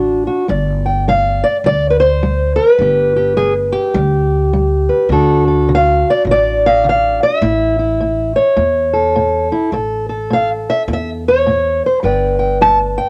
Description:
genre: acoustic country blues, solo or duo.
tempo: 104 BPM.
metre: 4/4.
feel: swing 62% on 8ths.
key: unclear.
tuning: A4 = 435 Hz.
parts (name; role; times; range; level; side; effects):
fingerpicked steel-string acoustic guitar; melody; 0.0-13.1 s; A2 to A5; -15 LUFS; equal; plate reverb.
upright bass; bass; 0.0-13.0 s; G1 to E2; -21 LUFS; equal; none.
room: wet booth ambience, RT60 0.2 s.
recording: home recording on cassette.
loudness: -14 LUFS.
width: mono.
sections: 0.0-13.1 A section.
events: none.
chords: 0.5 G; 5.1 D; 7.4 A; 12.0 G.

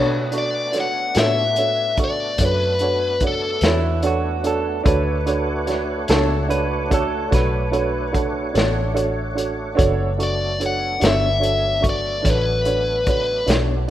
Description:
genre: slow blues.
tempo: 49 BPM (dotted quarters).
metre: 12/8.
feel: straight.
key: B minor.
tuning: A4 = 441 Hz.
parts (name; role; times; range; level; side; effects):
mellow electric guitar; accompaniment; 0.0-13.7 s; B3 to C#5; -27 LUFS; left 3 dB; tremolo.
warm upright piano; accompaniment; 0.0-13.9 s; D4 to C#6; -24 LUFS; right 4 dB; none.
tonewheel organ; sustained chords; 0.0-13.9 s; F#3 to C#5; -30 LUFS; right 1 dB; overdrive, chorus vibrato, slow rotary speaker.
vintage muted fingered electric bass; bass; 0.0-13.9 s; F#1 to B2; -24 LUFS; equal; none.
vintage drum kit; drums; 0.3-13.7 s; hi-hat, kick drum, snare drum; -22 LUFS; equal; none.
biting lead guitar; melody; 0.4-13.5 s; A4 to F#5; -21 LUFS; left 2 dB; overdrive.
electric slide guitar; second line; 3.6-8.1 s; E4 to B4; -26 LUFS; right 4 dB; analog delay.
room: light reverb, small room ambience.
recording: rough home demo mix.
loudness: -17 LUFS.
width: side -12 dB against mid.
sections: 0.0-13.9 A section.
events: none.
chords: 0.0 Bm9.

